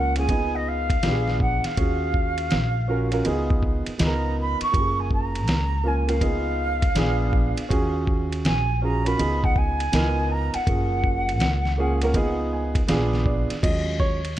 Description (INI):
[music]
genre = hip hop, jazz-hop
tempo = 81 BPM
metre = 4/4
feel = swing 64% on 16ths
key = Eb minor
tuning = A4 = 440 Hz
[part]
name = mellow silver concert flute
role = melody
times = 0.0-12.4 s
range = Eb5 to Db6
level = -27 LUFS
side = right 1 dB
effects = none
[part]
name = dark grand piano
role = accompaniment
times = 0.0-14.4 s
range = F3 to Ab5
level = -27 LUFS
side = right 2 dB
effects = none
[part]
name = upright bass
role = bass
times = 0.0-14.3 s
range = Gb1 to Eb2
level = -25 LUFS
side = equal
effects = none
[part]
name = lo-fi sampler-style drum kit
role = drums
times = 0.2-14.4 s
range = crash cymbal, hi-hat, kick drum, ride cymbal, snare drum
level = -25 LUFS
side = equal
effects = none
[sound]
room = small room ambience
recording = dark, warm production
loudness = -20 LUFS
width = side -13 dB against mid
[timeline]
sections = 0.0-13.6 A section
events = flute solo 0.0-13.6; grand piano fill 12.2-13.6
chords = 0.3 Db7; 1.0 Bb7b9; 1.8 Ebm11; 3.3 Db9; 4.0 Db13; 4.7 Gbmaj7; 6.2 Db7; 7.0 Bb7b9; 7.7 Ebm11; 9.2 Db9; 9.9 Db13; 10.7 Gbmaj7; 12.2 Db7; 12.9 Bb7b9; 13.6 Ebm11